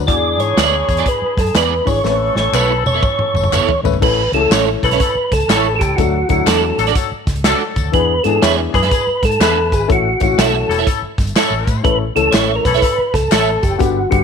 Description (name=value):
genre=uptempo 1960s-style soul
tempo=122 BPM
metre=4/4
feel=swing 65% on 8ths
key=unclear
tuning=A4 = 440 Hz
part: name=vintage muted fingered electric bass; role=bass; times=0.0-14.2 s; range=E1 to A2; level=-21 LUFS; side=equal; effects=none
part: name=percussive tonewheel organ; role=melody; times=0.1-14.2 s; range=F#4 to D5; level=-17 LUFS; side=right 1 dB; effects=overdrive, chorus vibrato, fast rotary speaker
part: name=warm horn section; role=second line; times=0.1-13.8 s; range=E3 to B4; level=-22 LUFS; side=left 13 dB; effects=none
part: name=warm upright piano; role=accompaniment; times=0.1-14.2 s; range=D3 to B4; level=-20 LUFS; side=left 15 dB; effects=none
part: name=natural country drum kit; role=drums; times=0.1-14.2 s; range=crash cymbal, hi-hat, kick drum, snare drum, toms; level=-19 LUFS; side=equal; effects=none
part: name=tambourine and handclaps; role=percussion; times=0.1-13.9 s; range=none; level=-27 LUFS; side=left 15 dB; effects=none
part: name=electric guitar at the edge of break-up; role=stabs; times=0.6-13.5 s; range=B3 to E5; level=-19 LUFS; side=right 14 dB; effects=ensemble chorus
room=light reverb, studio reverb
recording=1960s-style stereo with parts hard left and right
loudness=-12 LUFS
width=side -6 dB against mid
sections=0.0-4.0 A section; 4.0-14.2 B section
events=drum fill 2.1-4.0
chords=0.1 E7; 2.1 Aadd9; 4.0 A; 6.0 D; 7.9 E7; 9.9 A